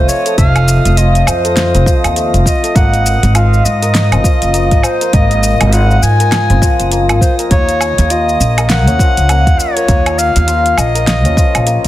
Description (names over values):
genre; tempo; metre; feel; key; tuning
organic downtempo; 101 BPM; 4/4; swing 60% on 16ths; unclear; A4 = 440 Hz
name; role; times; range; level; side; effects
warm clarinet; melody; 0.0-11.9 s; C5 to Ab5; -16 LUFS; equal; ping-pong delay
santur; arpeggios; 0.0-11.9 s; F3 to Bb4; -17 LUFS; left 2 dB; ping-pong delay
upright bass; bass; 0.0-11.9 s; F1 to Ab2; -12 LUFS; equal; sidechain pumping
drifting glass-harmonics texture; texture; 0.0-11.9 s; Eb5; -25 LUFS; right 2 dB; chorus, built-in reverb
deep house drum kit; drums; 0.1-11.9 s; hi-hat, shaker, snare drum, woodblock; -17 LUFS; equal; none
electronic kick drum; drums; 0.4-11.5 s; none; -12 LUFS; equal; none
room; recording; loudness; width
light reverb, small room ambience; dense, heavily limited modern master; -9 LUFS; side -14 dB against mid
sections
0.0-11.9 A section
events
none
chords
0.0 F7; 2.8 Ab7; 7.5 Ebm7